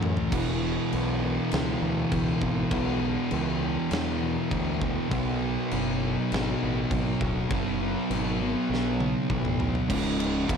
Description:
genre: stoner and doom metal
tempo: 100 BPM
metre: 4/4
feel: straight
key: unclear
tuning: A4 = 440 Hz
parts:
  - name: thick fuzz guitar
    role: riff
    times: 0.0-10.6 s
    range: C#2 to B3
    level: -30 LUFS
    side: left 8 dB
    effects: distortion
  - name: thick fuzz guitar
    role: riff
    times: 0.0-10.6 s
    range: C#2 to B3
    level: -30 LUFS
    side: right 10 dB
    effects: distortion
  - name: thick fuzz guitar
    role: riff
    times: 0.0-10.6 s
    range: C#2 to B3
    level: -33 LUFS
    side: equal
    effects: distortion
  - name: growling fingered electric bass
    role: bass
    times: 0.0-10.6 s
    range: C#1 to F#2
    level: -32 LUFS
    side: equal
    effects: overdrive
  - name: big rock drum kit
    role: drums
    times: 0.0-10.6 s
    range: crash cymbal, kick drum, ride cymbal, snare drum, toms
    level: -32 LUFS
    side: equal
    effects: none
room: small room ambience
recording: none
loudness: -24 LUFS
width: side -6 dB against mid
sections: 0.0-9.9 A section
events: drum fill 0.0-0.3, 8.7-9.9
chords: 0.3 E5; 5.1 B5; 9.9 C#m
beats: | 0.33 0.93 1.52 2.12 | 2.72 3.32 3.92 4.52 | 5.12 5.72 6.32 6.91 | 7.51 8.11 8.71 9.30 | 9.90 10.50

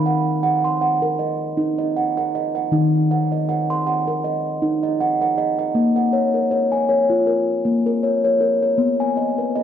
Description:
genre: world meditative, meditative tuned percussion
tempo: 79 BPM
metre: 4/4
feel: swing 55% on 16ths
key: Eb minor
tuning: A4 = 439 Hz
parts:
  - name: steel tongue drum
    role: solo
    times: 0.0-9.6 s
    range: Eb3 to C6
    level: -17 LUFS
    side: equal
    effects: diffuse ambient delay
room: wet concert hall reverb, RT60 2.1 s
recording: dark, warm production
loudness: -17 LUFS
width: side -9 dB against mid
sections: 0.0-9.6 A section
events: none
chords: 0.0 Ebm; 5.8 Bbm; 8.8 B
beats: 0.44 1.20 1.96 | 2.72 3.48 4.24 5.00 | 5.76 6.52 7.28 8.04 | 8.79 9.55

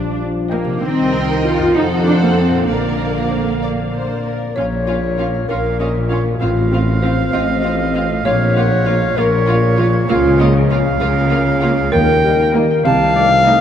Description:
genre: cinematic, playful, whimsical film cue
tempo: 65 BPM (dotted quarters)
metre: 6/8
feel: straight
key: Bb major, Bb minor from 4.6 s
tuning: A4 = 440 Hz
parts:
  - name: muted studio viola section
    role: accompaniment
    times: 0.0-13.6 s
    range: A3 to F4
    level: -24 LUFS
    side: right 3 dB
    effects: none
  - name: dark French horn section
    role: sustained chords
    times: 0.0-13.6 s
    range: D3 to F4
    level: -24 LUFS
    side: equal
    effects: none
  - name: concert harp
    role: arpeggios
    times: 0.0-13.6 s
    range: F2 to Bb5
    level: -24 LUFS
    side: left 1 dB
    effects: none
  - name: muted studio cello section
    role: bass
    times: 0.0-13.6 s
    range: A2 to F4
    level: -22 LUFS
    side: left 1 dB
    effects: none
  - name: muted studio double bass section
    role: bass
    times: 0.0-13.6 s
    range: A1 to F2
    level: -22 LUFS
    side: equal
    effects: none
  - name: muted studio violin section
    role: melody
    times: 0.5-13.6 s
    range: F5 to A5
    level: -30 LUFS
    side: left 1 dB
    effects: none
  - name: muted studio violin section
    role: second line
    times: 0.5-13.6 s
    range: Eb4 to Eb5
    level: -27 LUFS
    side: equal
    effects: none
  - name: folk marimba with medium hard mallets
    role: melody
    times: 3.3-13.6 s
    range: F4 to F5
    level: -25 LUFS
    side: right 2 dB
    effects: none
  - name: dark clarinet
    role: second line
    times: 3.3-13.6 s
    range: F4 to F5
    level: -19 LUFS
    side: left 4 dB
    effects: none
  - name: mellow tuba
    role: bass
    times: 4.6-13.6 s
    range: A1 to Eb2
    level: -20 LUFS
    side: equal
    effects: none
  - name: clear oboe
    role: second line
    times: 5.5-13.6 s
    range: Db5 to A5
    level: -22 LUFS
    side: right 4 dB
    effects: none
room: wet cathedral reverb, RT60 5.4 s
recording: in a vast, echoing space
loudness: -13 LUFS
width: side -9 dB against mid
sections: 0.0-4.6 A section; 4.6-13.6 B section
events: none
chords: 0.0 Ebmaj7/Bb; 0.8 Cm7; 1.7 F7b9; 2.7 Bb; 4.6 Bbm; 6.4 F7/A; 8.3 Bbm; 10.1 Bbm/Db; 11.9 Eb; 12.9 Adim/C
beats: | 0.82 1.75 | 2.68 3.62 | 4.57 5.49 | 6.42 7.33 | 8.25 9.17 | 10.09 11.01 | 11.93 12.86

